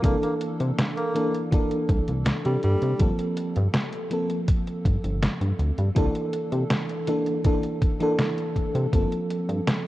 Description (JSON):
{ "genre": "vaporwave", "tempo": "81 BPM", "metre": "4/4", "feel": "straight", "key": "unclear", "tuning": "A4 = 440 Hz", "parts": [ { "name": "warm tenor saxophone", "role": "melody", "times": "0.0-3.1 s", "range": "G3 to Bb3", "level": "-32 LUFS", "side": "equal", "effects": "vintage 12-bit sampler grit, tape echo" }, { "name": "FM electric piano with soft pad layer", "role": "accompaniment", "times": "0.0-9.9 s", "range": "E3 to A4", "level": "-26 LUFS", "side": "equal", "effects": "tremolo, analog chorus, analog delay" }, { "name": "chorused synth bass", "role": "bass", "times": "0.0-9.6 s", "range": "G1 to C3", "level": "-24 LUFS", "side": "equal", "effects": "none" }, { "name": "detuned 8-bit digital drum machine", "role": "drums", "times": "0.0-9.8 s", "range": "hi-hat, snare drum", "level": "-28 LUFS", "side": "equal", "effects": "overdrive, vintage 12-bit sampler grit" }, { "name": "electronic kick drum", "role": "drums", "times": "0.0-9.1 s", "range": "none", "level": "-23 LUFS", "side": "equal", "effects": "overdrive, vintage 12-bit sampler grit" } ], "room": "light reverb", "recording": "worn, warbling old tape, cassette tape, warbly pitch drift, lossy compression artefacts", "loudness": "-22 LUFS", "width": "side -16 dB against mid", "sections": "0.0-9.9 A section", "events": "none", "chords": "0.0 C13; 3.0 Gm11; 6.0 C13 (rootless); 8.9 Gm11" }